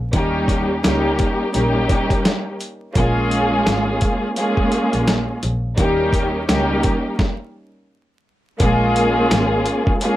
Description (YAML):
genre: hip hop, boom-bap hip-hop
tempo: 85 BPM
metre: 4/4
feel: swing 58% on 16ths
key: Bb dorian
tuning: A4 = 445 Hz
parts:
  - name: warm studio string section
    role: accompaniment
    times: 0.1-10.2 s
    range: G3 to Ab4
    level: -18 LUFS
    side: equal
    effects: high-pass filter, low-pass filter
  - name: rich double bass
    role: bass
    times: 0.1-9.6 s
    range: Ab1 to Eb2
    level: -23 LUFS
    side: equal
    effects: none
  - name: dusty soul sampler-style drum kit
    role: drums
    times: 0.1-10.2 s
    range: hi-hat, kick drum, snare drum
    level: -20 LUFS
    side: equal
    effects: overdrive
room: moderate studio reverb, RT60 0.6 s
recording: vinyl crackle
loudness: -16 LUFS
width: side -14 dB against mid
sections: 0.0-8.6 A section; 8.6-10.2 B section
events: stop 7.2-8.6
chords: 0.1 Eb7; 3.0 Bbm7; 5.8 Eb7; 8.6 Bbm7